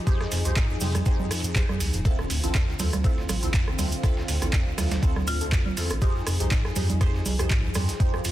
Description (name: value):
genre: acid house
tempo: 121 BPM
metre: 4/4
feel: swing 55% on 16ths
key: D minor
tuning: A4 = 439 Hz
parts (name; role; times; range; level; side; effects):
- warm analog pad; sustained chords; 0.0-8.3 s; D3 to Ab4; -35 LUFS; left 1 dB; chorus, vintage 12-bit sampler grit, sidechain pumping
- acid bass, square; riff; 0.1-8.3 s; D1 to F3; -31 LUFS; equal; ensemble chorus
- filtered dub chord stab; stabs; 0.1-8.2 s; C4 to C5; -35 LUFS; right 1 dB; phaser, lush chorus, ping-pong delay
- dusty soul sampler-style drum kit; drums; 0.1-8.3 s; hi-hat, ride cymbal, snare drum; -40 LUFS; right 3 dB; sidechain pumping on cymbals, high-pass filter on cymbals, high-pass filter on snare, sidechain pumping on hats, high-pass filter on hats
- electronic kick drum; drums; 0.1-8.1 s; none; -23 LUFS; equal; none
- punchy analog drum machine; drums; 0.1-8.3 s; congas, handclaps, hi-hat, rim click; -30 LUFS; right 3 dB; overdrive
- cabasa; percussion; 0.1-8.3 s; none; -37 LUFS; right 4 dB; none
- saturated sub bass; bass; 0.3-8.3 s; D1 to F2; -28 LUFS; equal; sidechain pumping
- marimba with hard mallets; melody; 5.3-5.4 s; F4; -35 LUFS; left 2 dB; ping-pong delay
room: digital ambience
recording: dense, heavily limited modern master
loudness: -22 LUFS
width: side -14 dB against mid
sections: 0.0-8.3 A section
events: none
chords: 0.0 Fm7; 2.1 Dm7; 6.0 Fm7